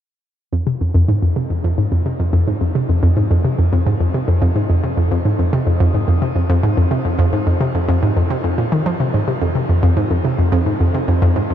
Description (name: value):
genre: ambient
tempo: 108 BPM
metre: 4/4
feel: straight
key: F minor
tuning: A4 = 440 Hz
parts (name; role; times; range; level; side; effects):
- hollow square pluck; solo; 0.5-11.5 s; F2 to F3; -14 LUFS; equal; chorus, analog delay
room: moderate shimmer reverb, RT60 8.6 s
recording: dark, warm production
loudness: -14 LUFS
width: side -10 dB against mid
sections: 0.5-11.5 A section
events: none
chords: none